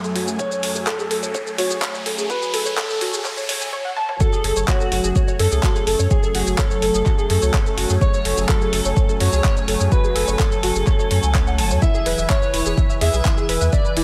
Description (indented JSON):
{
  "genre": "progressive house",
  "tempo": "126 BPM",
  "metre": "4/4",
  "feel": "straight",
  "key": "F# minor",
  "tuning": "A4 = 439 Hz",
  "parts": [
    { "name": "warm grand piano", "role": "melody", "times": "0.0-14.0 s", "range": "F#4 to E5", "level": "-29 LUFS", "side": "equal", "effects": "sidechain pumping, delay" },
    { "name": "warm analog pad", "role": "sustained chords", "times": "0.0-14.0 s", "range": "F#2 to G#5", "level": "-31 LUFS", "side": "equal", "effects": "chorus, phaser, sidechain pumping" },
    { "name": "soft round pluck", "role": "arpeggios", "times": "0.0-14.0 s", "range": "E4 to A5", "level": "-28 LUFS", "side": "equal", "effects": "ensemble chorus, cassette tape, sidechain pumping, delay" },
    { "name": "deep house drum kit", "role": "drums", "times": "0.0-14.0 s", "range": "handclaps, hi-hat, shaker, toms", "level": "-28 LUFS", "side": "equal", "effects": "high-pass filter on perc, high-pass filter on hats, high-pass filter on snare, high-pass filter on toms, high-pass filter on room" },
    { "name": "riser", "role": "sound effects", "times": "0.1-3.7 s", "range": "none", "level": "-33 LUFS", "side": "equal", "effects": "none" },
    { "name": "electronic kick drum", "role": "drums", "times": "0.4-13.8 s", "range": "none", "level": "-21 LUFS", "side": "equal", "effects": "high-pass filter on kick, high-pass filter on room" },
    { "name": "airy dreamy lead", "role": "second line", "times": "4.2-14.0 s", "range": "F#4 to E5", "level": "-32 LUFS", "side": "equal", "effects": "chorus, sidechain pumping, delay" },
    { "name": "saturated sub bass", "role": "bass", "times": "4.4-14.0 s", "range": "E1 to F#2", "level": "-23 LUFS", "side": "equal", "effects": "tube saturation, sidechain pumping" }
  ],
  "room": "light reverb, digital ambience",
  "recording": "high-pass filter",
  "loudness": "-19 LUFS",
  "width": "mono",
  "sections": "0.0-4.2 A section; 4.2-14.0 B section",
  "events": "build-up 0.0-4.2; filter sweep on synth pluck 0.0-4.2; filter sweep 0.0-4.2; riser 0.1-3.7; drum fill 4.0; drop 4.2-14.0",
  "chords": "0.0 F#madd9; 11.8 E",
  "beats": "| 0.39 0.87 1.35 1.82 | 2.30 2.77 3.25 3.73 | 4.20 4.68 5.16 5.63 | 6.11 6.58 7.06 7.54 | 8.01 8.49 8.96 9.44 | 9.92 10.39 10.87 11.35 | 11.82 12.30 12.78 13.25 | 13.73"
}